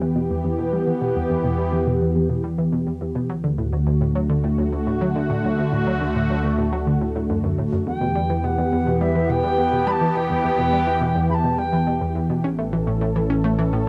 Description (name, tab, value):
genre	ambient, sequencer-driven space music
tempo	105 BPM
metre	4/4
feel	straight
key	E dorian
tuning	A4 = 441 Hz
part	sweeping resonant pad	sustained chords	0.0-13.9 s	D3 to A4	-25 LUFS	equal	chorus
part	analog pluck	riff	0.0-13.9 s	D2 to C#4	-27 LUFS	equal	chorus, analog delay
part	fat analog bass	bass	0.0-13.9 s	A1 to E2	-29 LUFS	equal	none
part	wooden flute	melody	7.9-12.2 s	E5 to B5	-26 LUFS	equal	plate reverb, analog delay
room	wet booth ambience, RT60 0.2 s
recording	home recording on cassette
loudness	-21 LUFS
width	mono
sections	0.0-13.9 A section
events	filter sweep on synth arpeggio sound 0.0-13.9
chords	0.0 Em; 3.3 D; 7.9 Em; 12.4 A